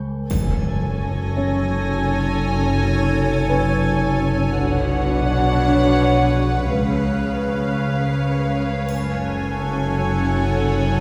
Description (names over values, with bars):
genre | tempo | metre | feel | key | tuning
cinematic, suspense film score | 84 BPM | 3/4 | straight | F# harmonic minor | A4 = 440 Hz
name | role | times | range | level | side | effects
metallic inharmonic drone | drone | 0.0-11.0 s | F#1 to C#2 | -26 LUFS | equal | chorus, built-in reverb
warm symphonic violin section | melody | 0.3-11.0 s | E#5 to G#5 | -30 LUFS | equal | none
warm symphonic violin section | second line | 0.3-11.0 s | A4 to C#5 | -32 LUFS | equal | none
dark symphonic viola section | accompaniment | 0.3-11.0 s | C#4 to D4 | -29 LUFS | equal | none
evolving wavetable pad | sustained chords | 1.0-11.0 s | A4 to G#5 | -30 LUFS | equal | phaser, built-in reverb
rich symphonic cello section | bass | 0.3-11.0 s | F#2 to C#3 | -28 LUFS | equal | none
rich symphonic double bass section | bass | 0.3-11.0 s | F#1 to C#2 | -26 LUFS | equal | none
triangle | percussion | 0.3-1.7, 8.9-10.3 s | none | -45 LUFS | equal | none
impact | sound effects | 0.3-2.5 s | none | -27 LUFS | equal | none
warm symphonic violin section | texture | 0.3-4.2 s | G#5 to A#6 | -41 LUFS | equal | none
felt-muted upright piano | texture | 1.4-8.9 s | C#4 to C#5 | -32 LUFS | equal | none
room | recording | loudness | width
wet scoring stage reverb, RT60 1.8 s | heard from further back in the room | -20 LUFS | mono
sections
0.3-11.0 A section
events
break 0.0-0.3; impact 0.3-2.4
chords
0.3 F#madd9; 4.6 Bmadd9; 6.7 C#7; 8.9 F#madd9